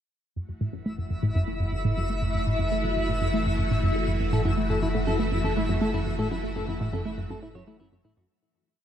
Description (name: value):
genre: ambient, sequencer-driven space music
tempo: 121 BPM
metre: 4/4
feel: straight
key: F# minor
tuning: A4 = 435 Hz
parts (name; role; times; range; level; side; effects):
- phased string machine; sustained chords; 0.4-8.3 s; E3 to F#4; -33 LUFS; equal; ensemble chorus, phaser
- tight sequenced synth; riff; 0.4-8.2 s; F#2 to A3; -28 LUFS; equal; chorus, ping-pong delay
- warm sub bass; bass; 0.4-8.3 s; F#1; -31 LUFS; equal; none
- twinkling granular texture; texture; 0.9-8.3 s; E4 to E5; -32 LUFS; left 1 dB; built-in reverb
- clean electric guitar; arpeggios; 4.3-8.2 s; E4 to C#5; -33 LUFS; equal; auto-pan, ping-pong delay
room: moderate huge ambient reverb, RT60 7.1 s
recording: none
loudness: -24 LUFS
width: side -10 dB against mid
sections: 0.4-8.3 A section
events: fade-in on string machine 0.4-8.3; filter sweep on synth arpeggio sound 0.4-8.3; fade-out 5.7-8.3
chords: 0.4 F#m7